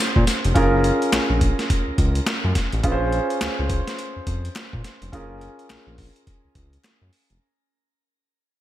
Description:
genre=R&B, new jack swing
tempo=105 BPM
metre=4/4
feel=swing 61% on 16ths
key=unclear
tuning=A4 = 440 Hz
part: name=warm concert grand piano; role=accompaniment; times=0.0-7.4 s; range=Db4 to C5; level=-24 LUFS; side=right 1 dB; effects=shimmer reverb
part: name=smooth synth bass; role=bass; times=0.2-7.4 s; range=F1 to Bb2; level=-23 LUFS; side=equal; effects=none
part: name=boom bap sampler-style drum kit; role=drums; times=0.2-7.4 s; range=hi-hat, kick drum, snare drum, tambourine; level=-22 LUFS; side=equal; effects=none
part: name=group handclap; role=percussion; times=1.1-7.0 s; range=none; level=-33 LUFS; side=left 5 dB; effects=none
room=moderate plate reverb, RT60 1.6 s, digital ambience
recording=dreamy mix soaked in reverb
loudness=-19 LUFS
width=side -13 dB against mid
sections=0.0-7.4 A section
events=fade-out 0.0-7.4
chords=0.0 Bbm7; 0.6 Gbmaj7; 2.8 Bbm7; 5.1 Gbmaj7

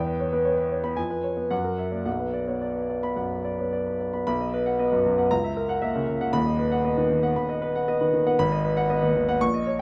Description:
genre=classical, virtuoso piano study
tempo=107-119 BPM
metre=4/4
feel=rubato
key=B minor, B major from 4.3 s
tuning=A4 = 435 Hz
part: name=warm grand piano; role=solo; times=0.0-9.8 s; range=D#1 to C#6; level=-25 LUFS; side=equal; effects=none
room=moderate large studio reverb, RT60 0.9 s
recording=none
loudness=-25 LUFS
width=mono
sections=0.0-4.3 A section; 4.3-9.8 B section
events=none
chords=0.0 C#m7b5/E; 1.0 C#7/E#; 1.5 F#7; 2.1 Bm; 4.3 B; 5.3 F#7/C#; 6.3 B/D#; 8.4 G#m7

